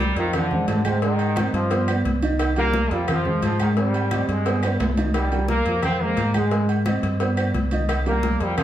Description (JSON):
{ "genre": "latin, salsa", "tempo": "175 BPM", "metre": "4/4", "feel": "straight", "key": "C minor", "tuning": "A4 = 439 Hz", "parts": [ { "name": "brilliant trombone section", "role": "melody", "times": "0.0-8.6 s", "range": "C3 to C4", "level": "-25 LUFS", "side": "equal", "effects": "plate reverb" }, { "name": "dark baby grand piano", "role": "accompaniment", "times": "0.0-8.6 s", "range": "Eb3 to Ab5", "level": "-25 LUFS", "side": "right 2 dB", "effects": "none" }, { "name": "deep dub fingered electric bass", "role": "bass", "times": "0.0-8.6 s", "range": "C2 to Ab2", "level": "-24 LUFS", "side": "equal", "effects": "none" }, { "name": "congas", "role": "percussion", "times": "0.2-8.6 s", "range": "none", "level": "-28 LUFS", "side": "left 2 dB", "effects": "none" }, { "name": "cowbell", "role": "percussion", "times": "0.2-8.6 s", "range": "none", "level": "-31 LUFS", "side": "left 3 dB", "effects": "none" }, { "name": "agogo bells and timbales", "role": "percussion", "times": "0.3-8.6 s", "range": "none", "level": "-30 LUFS", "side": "right 3 dB", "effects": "none" }, { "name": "claves", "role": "percussion", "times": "0.3-8.6 s", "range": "none", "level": "-38 LUFS", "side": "left 6 dB", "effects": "none" } ], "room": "wet large studio reverb, RT60 0.9 s", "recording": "heard from further back in the room", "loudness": "-19 LUFS", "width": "side -11 dB against mid", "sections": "0.0-8.6 A section", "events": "drum fill 4.6-5.1", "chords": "0.3 Fm; 1.0 Abmaj7; 1.7 G; 2.4 Cm7; 3.1 Fm; 3.8 Abmaj7; 4.5 G; 5.1 Cm7; 5.8 Fm; 6.5 Abmaj7; 7.2 G; 7.9 Cm7" }